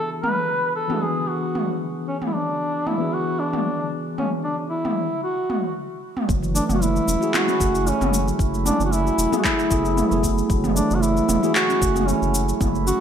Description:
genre	organic downtempo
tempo	114 BPM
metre	4/4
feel	swing 53% on 16ths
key	F# minor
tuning	A4 = 440 Hz
part	mellow duduk	melody	0.0-13.0 s	C#4 to B4	-24 LUFS	equal	ping-pong delay
part	tine electric piano	accompaniment	0.0-13.0 s	E3 to G#4	-28 LUFS	left 2 dB	medium stereo tremolo, sidechain pumping, ping-pong delay
part	organic electronic drum kit	drums	0.2-13.0 s	cabasa, handclaps, toms	-25 LUFS	equal	gated reverb
part	handpan	arpeggios	6.3-13.0 s	E3 to F#4	-24 LUFS	right 3 dB	ping-pong delay
part	round analog bass	bass	6.3-12.9 s	E1 to F#1	-24 LUFS	equal	none
part	electronic kick drum	drums	6.3-12.7 s	none	-25 LUFS	equal	none
room	moderate plate reverb, RT60 1.8 s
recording	bright 1980s-style digital production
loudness	-19 LUFS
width	side -8 dB against mid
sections	0.0-6.3 A section; 6.3-13.0 B section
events	none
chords	0.0 E9; 6.3 F#m9

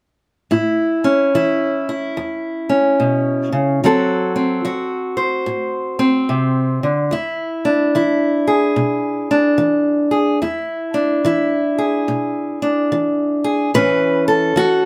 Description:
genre	acoustic country blues, solo or duo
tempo	73 BPM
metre	4/4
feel	swing 64% on 8ths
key	unclear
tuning	A4 = 440 Hz
part	fingerpicked steel-string acoustic guitar	solo	0.5-14.9 s	E2 to C5	-18 LUFS	equal	none
room	light reverb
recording	none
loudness	-18 LUFS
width	mono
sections	0.5-13.7 A section; 13.7-14.9 B section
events	none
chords	0.5 A; 3.8 D7; 7.1 E7; 13.7 A

